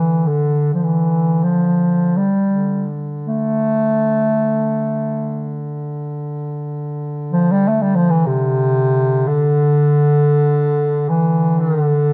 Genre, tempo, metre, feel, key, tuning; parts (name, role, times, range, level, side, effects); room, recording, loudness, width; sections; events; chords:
caucasian folk, Caucasian lament; free time; D minor; A4 = 440 Hz
mellow bass clarinet; melody; 0.0-12.1 s; C3 to A3; -17 LUFS; equal
mellow duduk; drone; 0.0-12.1 s; D3; -27 LUFS; equal
moderate recital hall reverb, RT60 1.6 s; close, detailed microphones; -17 LUFS; mono
0.0-12.1 A section
slowing down 9.1-12.1